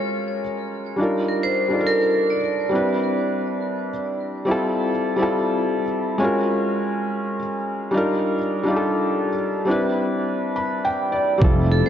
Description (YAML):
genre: lo-fi hip hop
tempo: 69 BPM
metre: 4/4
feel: swing 66% on 16ths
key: unclear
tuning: A4 = 435 Hz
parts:
  - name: felt-muted upright piano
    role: accompaniment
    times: 0.0-11.9 s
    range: G3 to B5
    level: -21 LUFS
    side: equal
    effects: low-pass filter
  - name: vibraphone with hard mallets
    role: melody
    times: 1.3-4.4, 11.7-11.9 s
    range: A4 to D5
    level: -24 LUFS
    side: right 1 dB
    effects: low-pass filter, ping-pong delay
  - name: warm analog pad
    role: sustained chords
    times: 11.4-11.9 s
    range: C3 to E5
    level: -26 LUFS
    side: right 3 dB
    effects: chorus, low-pass filter
  - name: sustaining fretless electric bass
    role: bass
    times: 11.4-11.8 s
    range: F1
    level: -19 LUFS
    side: equal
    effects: ensemble chorus
  - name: electronic kick drum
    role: drums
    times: 11.4-11.7 s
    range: none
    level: -18 LUFS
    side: right 1 dB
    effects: overdrive
room: wet plate reverb, RT60 3.6 s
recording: dreamy mix soaked in reverb, cassette tape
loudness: -20 LUFS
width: side -9 dB against mid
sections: 0.0-11.4 A section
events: felt piano fill 10.1-11.4; hi-hats muted 11.4-11.9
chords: 0.0 Gbmaj9; 1.0 Ebmaj9; 2.7 Cmaj9; 4.5 Fmaj9; 6.2 Gbmaj9; 7.9 Ebmaj9; 9.7 Cmaj9